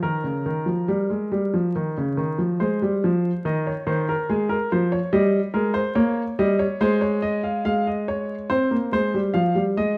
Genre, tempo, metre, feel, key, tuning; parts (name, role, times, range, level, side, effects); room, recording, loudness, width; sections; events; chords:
classical, baroque-style two-part invention for grand piano; 71 BPM; 3/4; straight; Ab major; A4 = 441 Hz
warm grand piano; solo; 0.0-10.0 s; Db3 to F5; -23 LUFS; equal
moderate stone room reverb, RT60 1.3 s; dark, warm production, vinyl crackle; -23 LUFS; mono
0.0-2.6 A section; 2.6-7.6 B section; 7.6-10.0 C section
0.0 Eb; 2.6 Ab; 4.3 Bbm7/Ab; 5.1 Eb7/G; 6.8 Ab; 7.6 Fm/Ab (rootless); 9.3 Fm9